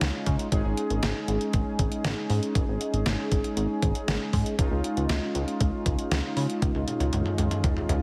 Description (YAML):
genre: synth-pop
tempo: 118 BPM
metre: 4/4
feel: straight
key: unclear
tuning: A4 = 443 Hz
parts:
  - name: analog synth brass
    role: accompaniment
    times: 0.0-8.0 s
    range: Ab3 to Ab4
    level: -32 LUFS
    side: equal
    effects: chorus
  - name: chorused synth bass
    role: bass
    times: 0.0-8.0 s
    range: Ab1 to Db3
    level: -30 LUFS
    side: equal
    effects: none
  - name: detuned 8-bit digital drum machine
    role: drums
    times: 0.0-8.0 s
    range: hi-hat, kick drum, snare drum, toms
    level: -30 LUFS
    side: equal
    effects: none
room: light reverb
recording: heavily compressed radio sound, multiband compression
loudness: -27 LUFS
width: mono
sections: 0.0-8.0 A section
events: drum fill 6.6-8.0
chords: 0.0 Dbadd9; 0.5 Absus4; 4.6 Dbadd9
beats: 0.01 | 0.52 1.03 1.54 2.04 | 2.55 3.06 3.57 4.08 | 4.59 5.10 5.60 6.11 | 6.62 7.13 7.64